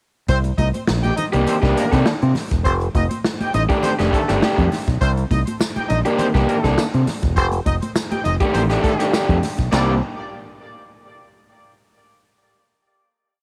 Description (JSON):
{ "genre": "funk", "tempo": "102 BPM", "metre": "4/4", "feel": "straight", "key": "C dorian", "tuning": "A4 = 440 Hz", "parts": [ { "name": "clear horn section", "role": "second line", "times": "0.3-9.9 s", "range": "A3 to G5", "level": "-28 LUFS", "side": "equal", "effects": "cassette tape, tape echo" }, { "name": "fingered electric bass", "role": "bass", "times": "0.3-10.0 s", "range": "E1 to C3", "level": "-22 LUFS", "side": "equal", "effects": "none" }, { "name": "swinging big-band drum kit", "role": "drums", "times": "0.3-9.9 s", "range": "hi-hat, kick drum, ride cymbal, snare drum", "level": "-26 LUFS", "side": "equal", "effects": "cassette tape" }, { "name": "congas", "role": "percussion", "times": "0.3-10.0 s", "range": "none", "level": "-31 LUFS", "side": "equal", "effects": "none" }, { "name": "raw garage guitar", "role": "accompaniment", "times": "1.3-9.9 s", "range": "Eb3 to A4", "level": "-22 LUFS", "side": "equal", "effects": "overdrive, spring reverb, cassette tape" }, { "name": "tambourine", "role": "percussion", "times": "5.6-10.0 s", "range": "none", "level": "-36 LUFS", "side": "equal", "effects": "none" } ], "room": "little or no reverb", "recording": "home recording on cassette", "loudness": "-19 LUFS", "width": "mono", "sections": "0.3-9.7 groove; 9.7-12.1 final chord", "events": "none", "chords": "0.3 Cm9; 2.7 F13; 5.0 Cm9; 7.4 F13; 9.7 Cm9" }